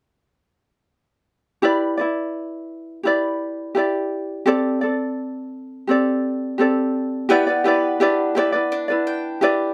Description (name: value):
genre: pop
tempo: 85 BPM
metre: 4/4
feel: straight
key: E minor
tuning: A4 = 440 Hz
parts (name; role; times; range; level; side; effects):
- ukulele; accompaniment; 1.6-9.7 s; C4 to D5; -21 LUFS; equal; none
- mandolin; arpeggios; 7.3-9.7 s; B3 to G5; -29 LUFS; equal; tape echo
room: moderate studio reverb, RT60 0.5 s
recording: none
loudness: -21 LUFS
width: mono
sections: 1.6-7.3 A section; 7.3-9.7 B section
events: none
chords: 1.6 Em7; 4.5 D7sus4; 7.3 Em7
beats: | 1.63 2.34 3.05 3.76 | 4.47 5.18 5.89 6.59 | 7.30 8.01 8.72 9.43